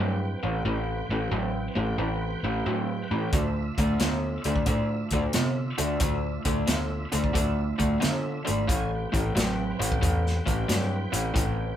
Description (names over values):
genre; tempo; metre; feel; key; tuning
blues rock power trio and southern rock; 90 BPM; 4/4; swing 67% on 8ths; A minor; A4 = 439 Hz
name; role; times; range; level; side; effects
overdriven tonewheel organ; sustained chords; 0.0-11.8 s; C4 to G#5; -38 LUFS; right 3 dB; slow rotary speaker, chorus vibrato
raw garage guitar; riff; 0.0-11.8 s; A2 to B3; -27 LUFS; equal; overdrive
vintage muted fingered electric bass; bass; 0.0-11.7 s; G#1 to D3; -30 LUFS; equal; none
vintage drum kit; drums; 3.3-11.6 s; hi-hat, kick drum, snare drum; -29 LUFS; equal; none
room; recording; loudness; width
light reverb; band playing live in one room; -24 LUFS; side -10 dB against mid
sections
0.0-11.8 A section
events
none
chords
0.0 Am9; 3.3 Dmadd9; 8.7 Am9